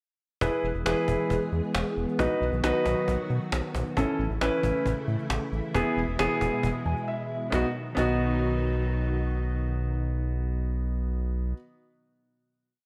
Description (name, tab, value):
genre	synth-pop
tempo	135 BPM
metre	4/4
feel	straight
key	B mixolydian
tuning	A4 = 440 Hz
part	warm concert grand piano	accompaniment	0.4-11.6 s	B3 to G#5	-31 LUFS	equal	none
part	soft string machine	sustained chords	0.4-11.1 s	B2 to G#4	-35 LUFS	equal	ensemble chorus
part	round analog bass	bass	0.4-11.5 s	E1 to B2	-31 LUFS	equal	none
part	cajon	drums	0.4-8.1 s	none	-36 LUFS	equal	none
room	moderate plate reverb, RT60 1.9 s, studio reverb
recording	bright 1980s-style digital production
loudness	-28 LUFS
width	mono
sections	0.4-7.5 pre-chorus; 7.5-11.1 final chord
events	grand piano fill 6.6-7.5; break 7.1-7.5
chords	0.4 E; 2.2 B; 4.0 A; 5.7 E; 7.5 B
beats	| 0.41 0.86 1.30 1.75 | 2.19 2.63 3.08 3.52 | 3.97 4.41 4.86 5.30 | 5.75 6.19 6.63 7.08 | 7.52 7.97 8.41 8.86 | 9.30 9.75 10.19 10.63